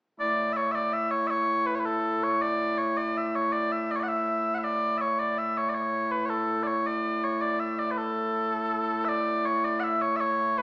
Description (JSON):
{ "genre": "scottish traditional, Scottish pipe music", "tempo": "108 BPM (dotted quarters)", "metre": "6/8", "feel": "straight", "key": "A major", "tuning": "A4 = 444 Hz", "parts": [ { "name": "mellow small bagpipes", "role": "solo", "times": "0.2-10.6 s", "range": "A2 to F#5", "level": "-25 LUFS", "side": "equal", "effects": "none" } ], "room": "wet large studio reverb, RT60 1.2 s", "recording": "band playing live in one room, small speaker sound", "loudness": "-25 LUFS", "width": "side -29 dB against mid", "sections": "0.2-9.1 A section; 9.1-10.6 A section", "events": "none", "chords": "none", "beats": "| 0.20 0.75 | 1.31 1.86 | 2.42 2.98 | 3.53 4.09 | 4.64 5.20 | 5.75 6.31 | 6.86 7.42 | 7.97 8.53 | 9.09 9.64 | 10.20" }